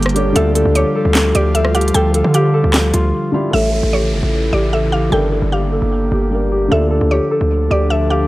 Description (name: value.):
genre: hip hop, trap.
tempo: 151 BPM.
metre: 4/4.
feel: half-time.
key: D harmonic minor.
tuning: A4 = 440 Hz.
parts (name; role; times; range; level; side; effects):
concert harp; melody; 0.0-8.3 s; F4 to A4; -18 LUFS; left 1 dB; low-pass filter.
felt-muted upright piano; accompaniment; 0.0-8.3 s; D3 to E5; -23 LUFS; equal; low-pass filter.
airy breathy pad; sustained chords; 0.0-8.3 s; C#3 to G4; -21 LUFS; right 1 dB; chorus, low-pass filter.
distorted 808-style bass; bass; 0.0-8.3 s; G1 to D3; -16 LUFS; equal; distortion.
trap drum kit; drums; 0.0-3.0 s; handclaps, hi-hat, rim click, snare drum; -18 LUFS; equal; none.
mallet-like synth pluck; second line; 0.4-8.3 s; C#5 to G5; -22 LUFS; right 1 dB; chorus, analog delay.
downlifter; sound effects; 3.5-6.7 s; none; -30 LUFS; right 1 dB; none.
room: little or no reverb.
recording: dry, gritty hardware recording.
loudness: -13 LUFS.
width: side -17 dB against mid.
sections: 0.0-3.5 A section; 3.5-8.3 B section.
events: break 3.1-3.5; filter sweep 3.5-8.3.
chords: 0.4 Dm; 3.5 A; 5.1 Gmadd9; 6.7 Dmadd9.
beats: | 0.36 0.75 1.15 1.55 | 1.95 2.34 2.74 3.14 | 3.53 3.93 4.33 4.73 | 5.12 5.52 5.92 6.32 | 6.71 7.11 7.51 7.91.